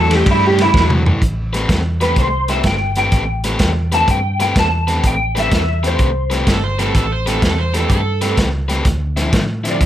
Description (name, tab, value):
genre	electric blues shuffle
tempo	126 BPM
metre	4/4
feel	swing 67% on 8ths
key	A minor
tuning	A4 = 439 Hz
part	electric guitar through a small old amp	melody	0.0-6.4, 9.7-9.8 s	E4 to A5	-18 LUFS	equal	ensemble chorus
part	crunchy overdriven guitar	riff	0.0-9.9 s	A2 to B4	-21 LUFS	left 2 dB	none
part	vintage muted fingered electric bass	bass	0.0-9.9 s	G1 to A2	-19 LUFS	equal	none
part	crunchy breakbeat drum kit	drums	0.1-9.9 s	hi-hat, kick drum, ride cymbal, snare drum, toms	-18 LUFS	equal	none
part	overdriven slide guitar	second line	6.5-8.4 s	A4 to C5	-22 LUFS	right 5 dB	none
room	light reverb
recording	none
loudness	-13 LUFS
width	side -12 dB against mid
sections	0.0-1.2 A section; 1.2-9.9 B section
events	clean electric guitar solo 0.0-1.2; drum fill 0.7-1.2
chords	0.0 A7(no3); 1.2 Am9; 8.9 Dm9